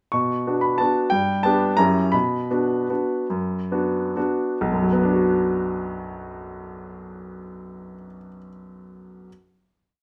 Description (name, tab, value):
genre	classical, piano waltz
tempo	129-192 BPM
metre	3/4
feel	rubato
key	B minor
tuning	A4 = 440 Hz
part	clear baby grand piano	solo	0.1-9.3 s	B1 to C#6	-23 LUFS	equal	none
room	moderate large studio reverb, RT60 0.8 s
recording	none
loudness	-22 LUFS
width	mono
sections	0.1-4.6 A section; 4.6-7.2 final chord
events	slowing down 1.6-4.6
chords	0.1 Bm; 1.1 G; 1.8 F#7b9; 2.1 Bm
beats	| 0.13 0.46 0.80 | 1.12 1.44 1.78 | 2.14 2.51 2.90 | 3.30 3.71 4.16 | 4.61 5.03 5.47 | 5.89 6.32 6.77